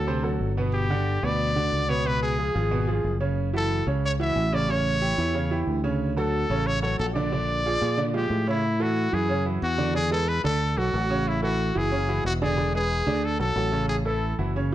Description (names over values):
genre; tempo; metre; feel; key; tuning
latin, salsa; 182 BPM; 4/4; straight; A major; A4 = 441 Hz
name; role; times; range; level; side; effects
bright trumpet; melody; 0.0-14.4 s; E4 to E5; -27 LUFS; left 1 dB; none
bright baby grand piano; accompaniment; 0.0-14.7 s; B2 to F#5; -28 LUFS; right 3 dB; none
fingered electric bass; bass; 0.0-14.7 s; E1 to Bb2; -26 LUFS; left 1 dB; none
room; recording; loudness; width
light reverb; dark, warm production; -22 LUFS; side -13 dB against mid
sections
0.0-8.6 A section; 8.6-14.7 B section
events
none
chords
0.1 D7; 0.7 Gmaj7; 2.1 C#7; 3.4 F#m7; 4.7 A7; 6.0 Dmaj7; 7.3 Bb7; 8.6 A5; 9.3 F#5; 9.9 E7; 10.6 D; 11.3 A; 11.9 F#5; 12.6 E7; 13.2 D; 13.9 A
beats
0.07 0.41 | 0.73 1.06 1.40 1.73 | 2.05 2.38 2.71 3.04 | 3.37 3.70 4.03 4.36 | 4.69 5.02 5.35 5.68 | 6.01 6.33 6.66 6.99 | 7.32 7.65 7.98 8.31 | 8.63 8.96 9.29 9.62 | 9.95 10.28 10.61 10.94 | 11.26 11.59 11.92 12.25 | 12.58 12.91 13.24 13.57 | 13.89 14.22 14.55